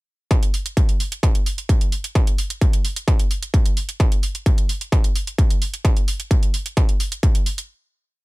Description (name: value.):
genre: techno.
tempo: 130 BPM.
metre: 4/4.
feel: straight.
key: none.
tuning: none.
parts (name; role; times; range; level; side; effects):
electronic hi-hat; drums; 0.3-7.7 s; none; -28 LUFS; right 3 dB; overdrive.
electronic kick drum; drums; 0.3-7.3 s; none; -17 LUFS; equal; distortion, overdrive.
room: little or no reverb.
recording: none.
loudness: -17 LUFS.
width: side -22 dB against mid.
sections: 0.3-7.7 groove.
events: none.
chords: none.